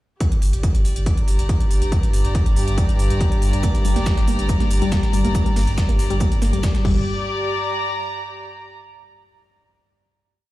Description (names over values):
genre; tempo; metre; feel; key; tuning
driving peak-time techno; 140 BPM; 4/4; straight; G minor; A4 = 439 Hz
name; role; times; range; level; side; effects
analog drone; drone; 0.6-7.1 s; G2; -28 LUFS; equal; chorus, sidechain pumping
electronic kick drum; drums; 0.2-6.9 s; none; -19 LUFS; equal; none
techno drum kit; drums; 0.2-6.9 s; crash cymbal, hi-hat; -35 LUFS; right 1 dB; sidechain pumping on hats, sidechain pumping on cymbals
warm chamber string section; texture; 0.2-8.7 s; G4 to Bb5; -27 LUFS; left 1 dB; sidechain pumping
warm sub bass; bass; 0.4-7.0 s; G1; -20 LUFS; equal; tube saturation, sidechain pumping, low-pass filter
warbly dusty pluck; riff; 3.6-7.0 s; G3 to Bb3; -25 LUFS; left 2 dB; chorus, sidechain pumping, ping-pong delay
breakbeat sampler-style drum kit; drums; 3.6-6.8 s; hi-hat, shaker, snare drum; -35 LUFS; equal; overdrive, high-pass filter on perc, high-pass filter on hats, high-pass filter on snare, high-pass filter on room
room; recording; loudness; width
digital ambience; played on a big sound system in a bare room, stone room reverb; -17 LUFS; side -16 dB against mid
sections
0.2-7.1 groove; 7.1-8.8 final note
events
none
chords
0.2 Gm; 6.8 G5; 7.1 Gm